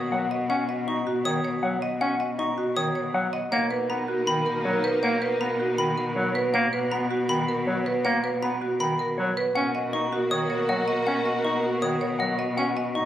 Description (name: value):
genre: classical, minimalist pattern music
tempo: 159 BPM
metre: 4/4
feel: straight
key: B major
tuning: A4 = 440 Hz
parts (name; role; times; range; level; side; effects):
- bright wooden-headed alto flute; second line; 0.0-0.3, 3.5-6.3, 9.6-12.3 s; A#4; -31 LUFS; right 1 dB; none
- rich studio string section; sustained chords; 0.0-0.3, 3.5-6.3, 9.6-12.3 s; A#3 to F#4; -34 LUFS; left 2 dB; none
- marimba with hard mallets; arpeggios; 0.0-13.0 s; F#4 to D#5; -30 LUFS; right 3 dB; none
- rich cello; bass; 0.0-13.1 s; B2; -30 LUFS; left 1 dB; none
- mellow electric guitar; melody; 0.1-13.1 s; A#4 to F#5; -32 LUFS; left 4 dB; none
- clear bass clarinet; accompaniment; 0.1-13.1 s; D#3 to D#4; -29 LUFS; equal; none
- xylophone with plastic mallets; arpeggios; 0.5-13.1 s; D#5 to D#6; -31 LUFS; left 1 dB; none
room: wet recital hall reverb, RT60 1.7 s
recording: recorded on a phone in the room, club reverb, compression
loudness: -23 LUFS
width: side -12 dB against mid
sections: 0.0-13.1 A section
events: none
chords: 0.0 Bmaj9